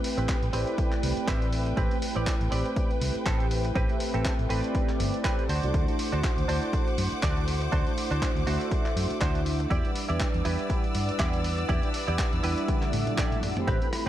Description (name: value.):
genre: nu-disco, nu disco.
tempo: 121 BPM.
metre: 4/4.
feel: swing 56% on 16ths.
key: A dorian.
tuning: A4 = 442 Hz.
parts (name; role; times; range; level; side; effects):
mellow synth brass; accompaniment; 0.0-14.1 s; G3 to F#5; -32 LUFS; right 1 dB; chorus, sidechain pumping, tape echo.
rich symphonic string section; sustained chords; 0.0-14.1 s; B4 to E6; -36 LUFS; equal; sidechain pumping.
dusty soul sampler-style drum kit; drums; 0.0-14.1 s; handclaps, hi-hat, rim click, toms; -36 LUFS; equal; none.
direct-recorded clean electric guitar; riff; 0.2-14.1 s; C4 to E5; -34 LUFS; right 3 dB; analog chorus, vintage 12-bit sampler grit, tape echo.
vintage muted fingered electric bass; bass; 0.2-14.1 s; G1 to A2; -29 LUFS; equal; none.
electronic kick drum; drums; 0.3-13.8 s; none; -28 LUFS; equal; none.
swell; sound effects; 12.9-13.7 s; none; -40 LUFS; left 5 dB; none.
room: digital ambience.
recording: dark, warm production.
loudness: -24 LUFS.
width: side -12 dB against mid.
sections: 0.0-14.1 A section.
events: clean electric guitar fill 1.0-1.8; drum fill 12.7-13.7; swell 12.9-13.7.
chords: 0.0 Am9; 5.5 D7; 9.7 Em7.